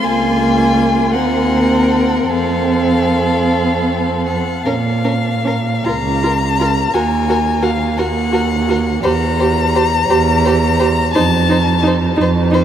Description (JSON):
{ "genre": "classical, slow romantic movement for string quartet", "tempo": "48-59 BPM (dotted quarters)", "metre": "6/8", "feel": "rubato", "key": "Bb minor", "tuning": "A4 = 435 Hz", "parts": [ { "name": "warm violin", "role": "melody", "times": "0.0-11.8 s", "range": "F5 to Bb5", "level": "-19 LUFS", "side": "left 5 dB", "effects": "none" }, { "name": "warm violin", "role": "second line", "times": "0.0-12.6 s", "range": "F4 to C5", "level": "-22 LUFS", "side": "left 2 dB", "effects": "none" }, { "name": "dark viola", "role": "accompaniment", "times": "0.0-12.6 s", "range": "Bb3 to G4", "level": "-18 LUFS", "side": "right 1 dB", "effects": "none" }, { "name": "rich cello", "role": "bass", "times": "0.1-12.6 s", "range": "Db2 to Bb2", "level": "-17 LUFS", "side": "right 4 dB", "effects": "none" } ], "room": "wet huge ambient reverb, RT60 7.5 s", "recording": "in a vast, echoing space", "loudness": "-12 LUFS", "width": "side -9 dB against mid", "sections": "0.0-4.7 A section; 4.7-12.6 B section", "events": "none", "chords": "0.1 Bbm/Db; 1.1 Cm7b5/Eb; 2.3 F; 4.7 Bbm; 5.9 Bbm/Db; 6.9 Ebm; 9.1 C7/E (rootless); 11.2 F7", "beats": "| 0.07 1.14 | 2.30 3.49 | 4.65 5.86 | 6.94 7.99 | 9.05 10.11 | 11.15 12.17" }